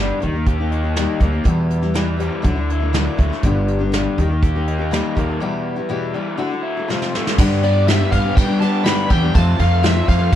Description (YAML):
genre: folk rock and heartland rock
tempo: 122 BPM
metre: 4/4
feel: straight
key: G mixolydian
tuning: A4 = 439 Hz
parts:
  - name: picked steel-string acoustic guitar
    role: accompaniment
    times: 0.0-10.4 s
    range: E2 to G4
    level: -23 LUFS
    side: left 6 dB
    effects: none
  - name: raw garage guitar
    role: riff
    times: 0.0-10.4 s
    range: E2 to G4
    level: -25 LUFS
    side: equal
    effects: overdrive
  - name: upright bass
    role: bass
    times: 0.0-10.4 s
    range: G1 to G3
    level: -18 LUFS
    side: right 1 dB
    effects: none
  - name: soft brush drum kit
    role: drums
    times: 0.2-10.4 s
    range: crash cymbal, hi-hat, kick drum, snare drum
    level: -20 LUFS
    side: right 1 dB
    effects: none
  - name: bluesy overdriven lead guitar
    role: melody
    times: 7.6-10.4 s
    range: D5 to B5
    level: -22 LUFS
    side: left 1 dB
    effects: distortion
room: little or no reverb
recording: none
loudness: -16 LUFS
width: side -11 dB against mid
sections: 0.0-7.4 A section; 7.4-10.4 B section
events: break 5.4-7.4; drum fill 6.9-7.4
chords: 0.2 Eb; 1.5 Em; 2.5 Dadd9; 3.4 G; 4.2 Eb; 5.4 Em; 6.4 Dadd9; 6.9 F; 7.4 G; 9.3 F